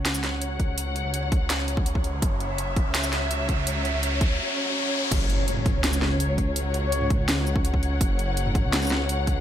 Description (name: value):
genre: half-time drum and bass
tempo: 166 BPM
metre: 4/4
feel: half-time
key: unclear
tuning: A4 = 442 Hz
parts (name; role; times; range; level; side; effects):
- dark symphonic string section; sustained chords; 0.0-9.4 s; F#3 to F#5; -30 LUFS; left 1 dB; sidechain pumping, low-pass filter
- dark detuned saw bass; bass; 0.0-9.4 s; F#1 to C#2; -27 LUFS; equal; none
- riser and impact; sound effects; 0.6-6.6 s; none; -31 LUFS; equal; none
- drum and bass drum kit; drums; 0.1-9.3 s; crash cymbal, hi-hat, shaker, snare drum, toms; -28 LUFS; equal; overdrive, high-pass filter on hats, high-pass filter on snare, high-pass filter on toms, high-pass filter on perc, high-pass filter on cymbals, high-pass filter on room
- electronic kick drum; drums; 0.6-9.3 s; none; -24 LUFS; equal; overdrive
- mellow concert flute; melody; 6.8-7.1 s; C#5; -32 LUFS; left 5 dB; ping-pong delay
room: light reverb, digital ambience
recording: none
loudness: -22 LUFS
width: side -10 dB against mid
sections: 0.0-5.1 A section; 5.1-9.4 B section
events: build-up 0.0-5.1; filter sweep on string section 0.0-5.1; riser 0.6-5.1; drop 5.1-9.4; impact 5.1-6.6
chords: 0.0 F#5